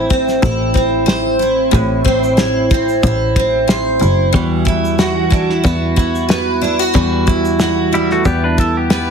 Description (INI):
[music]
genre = acoustic pop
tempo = 92 BPM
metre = 4/4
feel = swing 55% on 16ths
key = unclear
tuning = A4 = 440 Hz
[part]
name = picked steel-string acoustic guitar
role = accompaniment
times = 0.0-9.1 s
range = A2 to C5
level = -15 LUFS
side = equal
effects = double-tracked left and right
[part]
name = bright double bass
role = bass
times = 0.0-9.1 s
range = F#1 to E2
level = -19 LUFS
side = left 1 dB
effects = none
[part]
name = cloth-damped thuddy drum kit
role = drums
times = 0.1-9.1 s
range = kick drum, shaker, snare drum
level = -16 LUFS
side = equal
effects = none
[part]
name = twelve-string electric guitar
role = arpeggios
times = 4.3-9.1 s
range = G3 to F#4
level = -20 LUFS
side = right 5 dB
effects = tape echo
[part]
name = pedal steel guitar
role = second line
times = 7.9-9.1 s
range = G3 to B4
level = -17 LUFS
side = left 1 dB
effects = none
[sound]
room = moderate studio reverb, RT60 0.7 s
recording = heavily compressed radio sound, multiband compression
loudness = -12 LUFS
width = side -6 dB against mid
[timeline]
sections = 0.0-9.1 A section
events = none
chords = 0.0 Am; 4.3 Emadd9